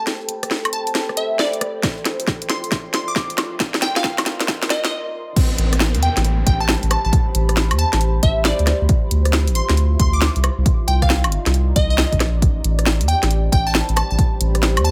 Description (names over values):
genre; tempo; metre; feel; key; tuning
UK garage, two-step garage; 136 BPM; 4/4; swing 65% on 16ths; A minor; A4 = 440 Hz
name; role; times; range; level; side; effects
glassy wavetable pluck; melody; 0.0-14.9 s; D5 to D6; -26 LUFS; equal; chorus, dub echo
deep dark ambient pad; texture; 0.0-14.9 s; Eb4 to C6; -32 LUFS; equal; chorus, built-in reverb, sidechain pumping
garage drum kit; drums; 0.1-14.9 s; crash cymbal, hi-hat, rim click, snare drum, woodblock; -23 LUFS; equal; none
electronic kick drum; drums; 1.8-14.3 s; none; -21 LUFS; equal; none
downlifter; sound effects; 5.4-8.9 s; none; -32 LUFS; equal; none
soft dub sub bass; bass; 5.6-14.9 s; G1 to E2; -20 LUFS; equal; tube saturation
room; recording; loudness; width
light reverb, digital ambience; high-pass filter; -18 LUFS; mono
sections
0.0-5.4 A section; 5.4-14.9 B section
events
build-up 0.0-5.4; drum fill 0.0-4.9; stop 4.9-5.4; drop 5.4-14.9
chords
0.0 Am9; 1.6 Dm9; 3.4 Cm7; 5.4 Am9; 8.7 Dm9; 10.4 Cm9; 12.4 Am9